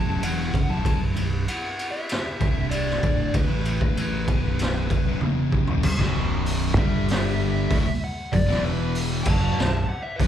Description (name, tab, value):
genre	stoner and doom metal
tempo	96 BPM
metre	4/4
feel	straight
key	B minor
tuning	A4 = 440 Hz
part	fuzz lead guitar	melody	0.0-10.3 s	B4 to A5	-31 LUFS	left 2 dB	distortion
part	fuzz guitar	riff	0.0-10.3 s	B1 to A3	-30 LUFS	left 7 dB	distortion
part	thick fuzz guitar	riff	0.0-10.3 s	B1 to A3	-29 LUFS	right 6 dB	distortion
part	fingered electric bass	bass	0.0-10.3 s	B0 to A1	-28 LUFS	equal	overdrive
part	raw garage drum kit	drums	0.2-10.3 s	crash cymbal, hi-hat, kick drum, ride cymbal, snare drum, toms	-25 LUFS	equal	none
part	tight distorted guitar	riff	6.0-10.3 s	B1 to G3	-30 LUFS	equal	distortion
room	moderate large studio reverb, RT60 0.9 s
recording	band playing live in one room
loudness	-21 LUFS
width	side -10 dB against mid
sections	0.0-5.8 A section; 5.8-10.3 B section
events	drum fill 5.2-5.8; lead electric guitar solo 5.8-10.3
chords	0.0 B5; 2.4 C5; 3.0 Bm; 5.8 B5; 6.8 G5; 7.7 Bm; 8.5 E5; 9.3 B5